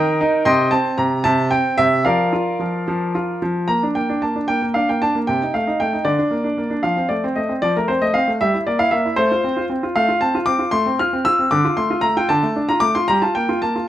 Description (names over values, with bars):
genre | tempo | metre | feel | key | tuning
classical-period piano sonatina | 76 BPM (dotted quarters) | 6/8 | straight | Bb major, F major from 10.0 s | A4 = 440 Hz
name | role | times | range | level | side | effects
clear baby grand piano | solo | 0.0-13.9 s | C3 to F6 | -16 LUFS | equal | none
room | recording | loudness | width
moderate recital hall reverb, RT60 1.4 s | close, detailed microphones | -16 LUFS | side -12 dB against mid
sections
0.0-3.7 A section; 3.7-13.9 A section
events
none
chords
0.5 Cm; 1.3 N.C.; 2.1 Bb/F; 3.7 Bb; 5.3 Adim/C; 6.1 Bb/D; 6.8 F; 8.4 Edim/G; 9.2 F/A; 11.5 Dm; 13.1 Gm7